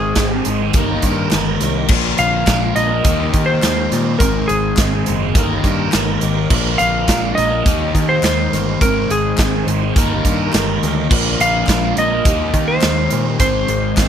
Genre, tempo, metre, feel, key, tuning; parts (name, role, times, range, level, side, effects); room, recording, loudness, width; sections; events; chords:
classic rock; 104 BPM; 4/4; straight; A4 = 440 Hz
clean lap steel guitar; melody; 0.0-14.1 s; Ab4 to F5; -19 LUFS; equal; digital delay
bright tonewheel organ; sustained chords; 0.0-14.1 s; Bb3 to Db5; -30 LUFS; equal; overdrive, chorus vibrato, fast rotary speaker
overdriven semi-hollow guitar; riff; 0.0-14.1 s; Ab2 to Eb4; -21 LUFS; left 12 dB
raw garage guitar; riff; 0.0-14.1 s; Ab2 to Bb4; -23 LUFS; right 14 dB; overdrive, phaser
picked electric bass; bass; 0.0-14.1 s; Gb1 to Eb3; -22 LUFS; equal
big rock drum kit; drums; 0.2-14.1 s; crash cymbal, hi-hat, kick drum, snare drum; -18 LUFS; right 1 dB
group handclap; percussion; 0.2-14.1 s; -28 LUFS; left 9 dB
light reverb; -14 LUFS; side -8 dB against mid
0.0-14.1 A section
0.0 Ab; 0.7 Eb/G; 1.9 Bb; 3.0 Eb; 4.2 Ab; 5.4 Eb/G; 6.5 Bb; 7.7 Eb; 8.8 Ab; 10.0 Eb/G; 11.1 Bb; 12.3 Eb; 13.4 Ab